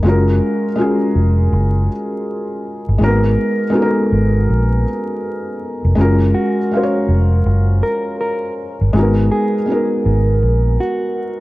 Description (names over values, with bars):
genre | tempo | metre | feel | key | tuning
lo-fi hip hop | 81 BPM | 4/4 | swing 65% on 16ths | F# major | A4 = 440 Hz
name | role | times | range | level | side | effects
felt-muted upright piano | accompaniment | 0.0-11.4 s | G#3 to E#5 | -17 LUFS | equal | none
vintage muted fingered electric bass | bass | 0.0-10.8 s | E#1 to A#1 | -14 LUFS | equal | none
mellow electric guitar | melody | 6.3-11.4 s | F#4 to A#4 | -23 LUFS | right 1 dB | none
room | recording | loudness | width
light reverb, small room ambience | dark, warm production, vinyl crackle | -14 LUFS | side -18 dB against mid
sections
0.0-11.4 A section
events
none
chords
0.0 F#maj9; 3.0 G#m9; 6.0 F#maj9; 8.9 G#m9